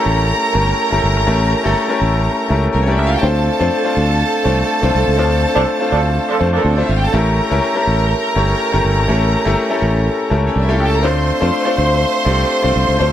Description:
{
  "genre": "disco",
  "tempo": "123 BPM",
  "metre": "4/4",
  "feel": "straight",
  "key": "D minor",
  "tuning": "A4 = 440 Hz",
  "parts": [
    { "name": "clear studio violin section", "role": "second line", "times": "0.0-13.1 s", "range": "Bb3 to C6", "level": "-19 LUFS", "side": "right 2 dB", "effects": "none" },
    { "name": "clear baby grand piano", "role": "accompaniment", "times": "0.0-13.1 s", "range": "A3 to C#5", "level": "-17 LUFS", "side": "left 3 dB", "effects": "none" },
    { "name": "fingered electric bass", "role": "bass", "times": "0.1-13.1 s", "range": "G1 to F2", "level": "-16 LUFS", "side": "right 1 dB", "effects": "none" },
    { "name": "mellow horn section", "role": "stabs", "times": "5.6-6.9 s", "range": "F3 to A4", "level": "-20 LUFS", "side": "right 4 dB", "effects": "none" }
  ],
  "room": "light reverb",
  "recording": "none",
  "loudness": "-13 LUFS",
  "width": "side -11 dB against mid",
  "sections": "0.0-13.1 A section",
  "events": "band accent 5.2-7.1",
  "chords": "0.0 A7b9; 3.2 Dm7; 7.1 A7b9; 11.0 Dm7"
}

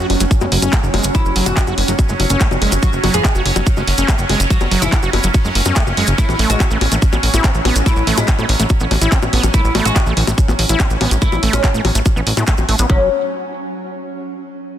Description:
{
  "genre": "psychedelic trance",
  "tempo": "143 BPM",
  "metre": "4/4",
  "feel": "straight",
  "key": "F# minor",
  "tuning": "A4 = 440 Hz",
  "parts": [
    { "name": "bubbling stepped-filter texture", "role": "sustained chords", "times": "0.0-12.9 s", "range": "F#3 to C#4", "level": "-23 LUFS", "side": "right 2 dB", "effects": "chorus, built-in reverb, sidechain pumping" },
    { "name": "overdriven acid bass", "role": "riff", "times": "0.0-13.1 s", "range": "E3 to F#4", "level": "-22 LUFS", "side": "moving between left 3 dB and right 3 dB", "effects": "distortion, auto-pan, sidechain pumping, dub echo" },
    { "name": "plucky analog bass", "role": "bass", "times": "0.0-13.1 s", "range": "F#1 to A2", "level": "-17 LUFS", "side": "equal", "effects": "none" },
    { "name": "garage drum kit", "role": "drums", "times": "0.1-12.9 s", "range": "bongos, handclaps, hi-hat", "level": "-20 LUFS", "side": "left 3 dB", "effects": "none" },
    { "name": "maracas", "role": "percussion", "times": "0.2-12.9 s", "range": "none", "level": "-27 LUFS", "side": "right 3 dB", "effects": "none" },
    { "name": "electronic kick drum", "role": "drums", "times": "0.3-13.0 s", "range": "none", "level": "-14 LUFS", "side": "equal", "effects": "none" },
    { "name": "oud", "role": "melody", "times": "1.1-13.1 s", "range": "C#4 to G#4", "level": "-23 LUFS", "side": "left 1 dB", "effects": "phaser, sidechain pumping, tape echo" }
  ],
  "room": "little or no reverb",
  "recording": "dense, heavily limited modern master",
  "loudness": "-12 LUFS",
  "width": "side -11 dB against mid",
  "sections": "0.0-12.9 A section; 12.9-14.6 B section",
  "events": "drop 0.0-12.9",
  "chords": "0.0 F#5; 6.2 A5; 12.9 F#5"
}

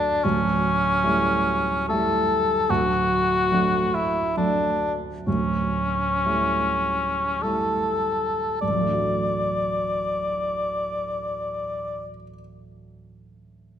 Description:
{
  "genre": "classical, romantic duo for cor anglais and grand piano",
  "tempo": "48-76 BPM",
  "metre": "3/4",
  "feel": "rubato",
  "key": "D major",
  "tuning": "A4 = 440 Hz",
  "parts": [
    { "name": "warm cor anglais", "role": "melody", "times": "0.0-12.1 s", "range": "C#4 to D5", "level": "-22 LUFS", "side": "left 2 dB", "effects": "none" },
    { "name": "warm baby grand piano", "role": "accompaniment", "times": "0.0-13.8 s", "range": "D1 to F#4", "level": "-26 LUFS", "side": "right 3 dB", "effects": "none" }
  ],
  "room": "wet recital hall reverb, RT60 1.7 s",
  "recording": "none",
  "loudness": "-21 LUFS",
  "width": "side -9 dB against mid",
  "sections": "0.0-8.6 A section; 8.6-11.8 B section",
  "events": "slowing down 1.4-8.6",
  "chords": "0.2 A7/D; 2.7 D; 5.3 A7/D; 8.6 D"
}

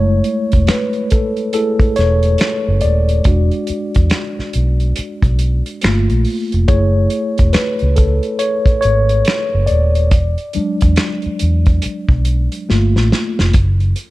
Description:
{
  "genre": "R&B, neo-soul",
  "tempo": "70 BPM",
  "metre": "4/4",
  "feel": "swing 62% on 16ths",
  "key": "F# minor",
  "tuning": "A4 = 441 Hz",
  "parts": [
    { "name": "mellow tine electric piano", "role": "accompaniment", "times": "0.0-13.6 s", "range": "F#3 to D5", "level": "-18 LUFS", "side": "left 1 dB", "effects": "medium stereo tremolo" },
    { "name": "vintage muted fingered electric bass", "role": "bass", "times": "0.0-13.9 s", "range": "D#1 to E2", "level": "-14 LUFS", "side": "equal", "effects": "none" },
    { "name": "warm soul drum kit", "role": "drums", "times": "0.2-14.1 s", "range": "finger snaps, hi-hat, kick drum, snare drum", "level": "-16 LUFS", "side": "equal", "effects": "none" }
  ],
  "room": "studio reverb",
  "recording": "dark, warm production",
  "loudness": "-13 LUFS",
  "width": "side -18 dB against mid",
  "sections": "0.0-14.1 A section",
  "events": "tine electric piano solo 0.0-14.1; drum fill 12.7-13.5",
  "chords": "0.0 F#m9 (rootless); 3.3 E7; 5.8 Gm9; 6.7 F#m9; 10.1 E7; 12.7 Gm9; 13.5 N.C."
}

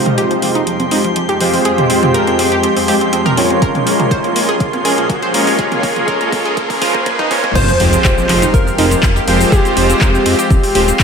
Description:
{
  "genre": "progressive house",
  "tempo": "122 BPM",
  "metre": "4/4",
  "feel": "straight",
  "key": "F minor",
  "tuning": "A4 = 440 Hz",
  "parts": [
    { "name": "shimmering ambient pad", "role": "sustained chords", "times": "0.0-11.0 s", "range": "F2 to Ab4", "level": "-19 LUFS", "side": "left 1 dB", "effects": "chorus, built-in reverb, vintage 12-bit sampler grit, sidechain pumping" },
    { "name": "soft supersaw", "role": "stabs", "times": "0.0-10.8 s", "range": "Ab3 to Db5", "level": "-16 LUFS", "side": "right 1 dB", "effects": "sidechain pumping, low-pass filter, tape echo" },
    { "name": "riser and sub drop", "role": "sound effects", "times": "0.0-9.5 s", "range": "none", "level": "-25 LUFS", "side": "equal", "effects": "none" },
    { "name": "drifting glass-harmonics texture", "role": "texture", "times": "0.1-11.0 s", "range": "F5 to C6", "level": "-26 LUFS", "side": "right 3 dB", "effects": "chorus, built-in reverb, sidechain pumping" },
    { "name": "wide unison pluck", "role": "arpeggios", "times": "0.1-11.0 s", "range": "F3 to C5", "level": "-20 LUFS", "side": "equal", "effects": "cassette tape, sidechain pumping, tape echo" },
    { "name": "deep house drum kit", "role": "drums", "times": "0.1-11.0 s", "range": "crash cymbal, handclaps, hi-hat, ride cymbal, shaker", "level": "-20 LUFS", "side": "left 1 dB", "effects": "overdrive" },
    { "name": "electronic toms and congas", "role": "percussion", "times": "0.1-7.5 s", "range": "none", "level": "-22 LUFS", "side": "right 2 dB", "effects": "overdrive, sidechain pumping on toms, sidechain pumping on perc" },
    { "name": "electronic kick drum", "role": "drums", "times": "3.6-11.0 s", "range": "none", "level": "-16 LUFS", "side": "equal", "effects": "overdrive" },
    { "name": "plucky unison lead", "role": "melody", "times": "7.6-11.0 s", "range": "G4 to C5", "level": "-18 LUFS", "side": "left 1 dB", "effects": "sidechain pumping, tape echo" },
    { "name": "fat analog bass", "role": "bass", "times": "7.6-11.0 s", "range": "Eb1 to F2", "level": "-17 LUFS", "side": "equal", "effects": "sidechain pumping" }
  ],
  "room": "wet plate reverb, RT60 1.3 s, digital ambience",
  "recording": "dreamy mix soaked in reverb, high-pass filter",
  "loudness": "-11 LUFS",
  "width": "side -6 dB against mid",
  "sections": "0.0-7.6 A section; 7.6-11.0 B section",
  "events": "build-up 0.0-7.6; riser 0.0-7.6; filter sweep on supersaw synth 0.0-7.6; filter sweep 0.0-7.6; drum fill 3.6-7.6; drop 7.6-11.0; impact 7.6-9.5",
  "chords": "0.0 Fmadd9; 3.6 Bbm7; 7.6 Fmadd9"
}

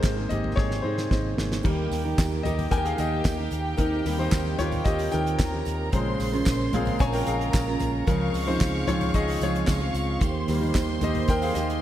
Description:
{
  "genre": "piano-driven pop",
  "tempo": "112 BPM",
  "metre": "4/4",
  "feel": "straight",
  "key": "Eb mixolydian",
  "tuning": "A4 = 441 Hz",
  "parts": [
    { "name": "bright grand piano", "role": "accompaniment", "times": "0.0-11.8 s", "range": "C3 to Ab5", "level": "-29 LUFS", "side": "left 4 dB", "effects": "none" },
    { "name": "tonewheel organ", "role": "sustained chords", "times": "0.0-11.8 s", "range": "C3 to G4", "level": "-34 LUFS", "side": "right 1 dB", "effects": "none" },
    { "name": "fingerpicked steel-string acoustic guitar", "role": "riff", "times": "0.0-11.8 s", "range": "Bb2 to C5", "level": "-30 LUFS", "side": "right 5 dB", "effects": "none" },
    { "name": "vintage muted fingered electric bass", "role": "bass", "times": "0.0-11.8 s", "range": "Ab1 to Ab2", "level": "-30 LUFS", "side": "equal", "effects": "none" },
    { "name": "damped 70s drum kit", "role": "drums", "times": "0.0-11.8 s", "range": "crash cymbal, handclaps, hi-hat, kick drum, snare drum, toms", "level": "-27 LUFS", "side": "equal", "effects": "none" },
    { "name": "tambourine", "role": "percussion", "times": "1.6-11.7 s", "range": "none", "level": "-47 LUFS", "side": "right 7 dB", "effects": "none" },
    { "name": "clear studio violin section", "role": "second line", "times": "1.7-11.8 s", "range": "G4 to Db6", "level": "-33 LUFS", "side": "equal", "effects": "none" }
  ],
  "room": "moderate lush hall reverb, RT60 1.7 s, small room ambience",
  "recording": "dreamy mix soaked in reverb",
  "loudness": "-22 LUFS",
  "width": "side -12 dB against mid",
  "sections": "0.0-1.6 A section; 1.6-11.8 B section",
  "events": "grand piano solo 0.0-1.6, 1.6-11.8; drum fill 0.6-1.6",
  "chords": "0.0 Abadd9; 1.6 Eb; 5.9 Bbm7; 8.1 Dbmaj7; 10.2 Eb"
}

